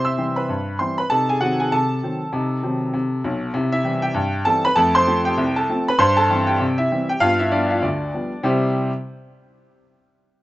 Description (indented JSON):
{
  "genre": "ragtime piano",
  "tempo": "98 BPM",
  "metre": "2/4",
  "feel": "swing 60% on 16ths",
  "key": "C major",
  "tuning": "A4 = 440 Hz",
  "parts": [
    { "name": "warm baby grand piano", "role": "solo", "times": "0.0-8.9 s", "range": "B1 to E6", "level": "-18 LUFS", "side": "equal", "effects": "none" }
  ],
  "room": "studio reverb",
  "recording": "rough home demo mix, nothing above 7.8 kHz",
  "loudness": "-18 LUFS",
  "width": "side -16 dB against mid",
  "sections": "0.0-8.4 A section; 8.4-9.7 B section",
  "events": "none",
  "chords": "0.0 C; 1.1 Cdim7; 3.6 C; 4.8 F; 6.0 C/G; 7.2 G7; 8.4 C",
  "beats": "0.49 | 1.11 1.72 | 2.33 2.94 | 3.55 4.16 | 4.77 5.38 | 5.99 6.60 | 7.22 7.83 | 8.45"
}